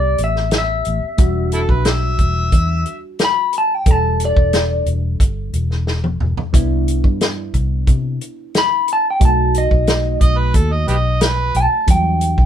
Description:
straight-eighth soul blues; 90 BPM; 4/4; straight; E minor; A4 = 438 Hz
electric guitar through a small old amp; melody; 0.0-12.5 s; D5 to B5; -18 LUFS; left 1 dB
reed electric piano; accompaniment; 0.0-12.5 s; F#3 to A4; -26 LUFS; right 2 dB; phaser
vintage muted fingered electric bass; bass; 0.0-12.5 s; E1 to C3; -18 LUFS; left 1 dB
warm soul drum kit; drums; 0.2-12.5 s; hi-hat, kick drum, snare drum, toms; -16 LUFS; equal
overdriven harmonica; second line; 1.5-3.0, 10.2-11.5 s; E4 to E5; -21 LUFS; right 2 dB
light reverb; band playing live in one room; -14 LUFS; side -10 dB against mid
0.0-12.5 A section
drum fill 5.9-6.5
0.0 Am7; 1.2 Em7; 6.5 Cmaj7; 9.2 B7; 11.9 Em7

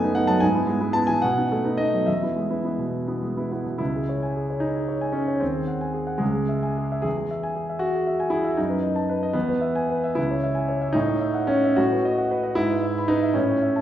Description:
classical, romantic character piece for solo piano; 67-80 BPM (dotted quarters); 6/8; rubato; E major, C# minor from 3.8 s, E major from 10.2 s; A4 = 441 Hz
warm concert grand piano; solo; 0.0-13.8 s; C#2 to B5; -21 LUFS; equal
wet recital hall reverb, RT60 1.3 s; heard from further back in the room; -21 LUFS; side -11 dB against mid
0.0-3.8 A section; 3.8-13.8 B section
0.4 E/G#; 1.2 B7; 2.1 E; 3.8 C#m; 5.4 G#7/D#; 6.2 C#m; 7.1 E; 8.6 B7/F#; 9.3 E; 10.2 C#m; 10.9 F#m7/A; 11.8 B7/A; 12.6 E/G#

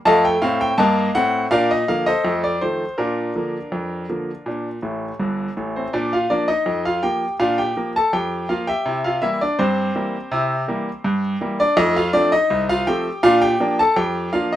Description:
ragtime piano; 82 BPM; 2/4; straight; Bb major; A4 = 442 Hz
bright grand piano; solo; 0.1-14.6 s; G1 to A5; -17 LUFS; equal
light reverb; minimal, uncompressed stereo recording; -18 LUFS; side -12 dB against mid
0.0-5.9 A section; 5.9-14.6 A section
grand piano fill 4.8-5.9
0.1 F7; 1.5 Bb; 2.2 F7; 3.0 Bb; 8.9 C7; 11.8 F7; 13.2 Bb

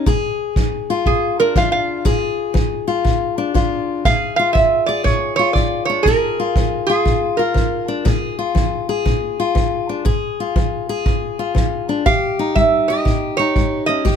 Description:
acoustic country blues, solo or duo; 120 BPM; 4/4; swing 66% on 8ths; Bb mixolydian; A4 = 439 Hz
fingerpicked steel-string acoustic guitar; accompaniment; 0.0-14.2 s; Bb2 to Ab4; -20 LUFS; left 6 dB
kick drum; drums; 0.1-14.2 s; -19 LUFS; right 1 dB
metal-body resonator slide guitar; melody; 1.1-8.3, 12.1-14.2 s; Ab4 to F5; -18 LUFS; right 4 dB
little or no reverb; -15 LUFS; side -7 dB against mid
0.0-4.1 A section; 4.1-14.2 B section
resonator guitar played with a steel bar solo 0.0-4.1
0.1 Bb7; 4.1 Bb7(no3); 12.1 Eb7

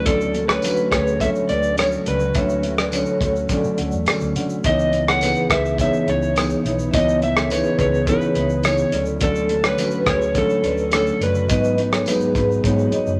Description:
indie pop, bedroom pop; 105 BPM; 4/4; straight; A4 = 440 Hz
electric slide guitar; melody; 0.0-13.2 s; A4 to F#5; -25 LUFS; equal
mellow electric guitar; accompaniment; 0.0-13.2 s; G#2 to D#4; -26 LUFS; equal; warbly pitch drift
soft string machine; sustained chords; 0.0-13.2 s; C#3 to B4; -35 LUFS; equal
vintage muted fingered electric bass; bass; 0.0-13.2 s; F#1 to D3; -29 LUFS; equal
vibraphone with medium mallets; second line; 0.1-13.1 s; F#4 to F#5; -26 LUFS; equal
cloth-damped thuddy drum kit; drums; 0.1-13.2 s; hi-hat, kick drum, rim click, shaker; -25 LUFS; equal
tambourine; percussion; 0.6-12.2 s; -38 LUFS; equal
moderate large studio reverb, RT60 0.9 s; -19 LUFS; mono
0.0-13.2 A section
0.0 Dmaj7; 4.6 C#m9; 8.9 Dmaj7; 11.5 G#m7

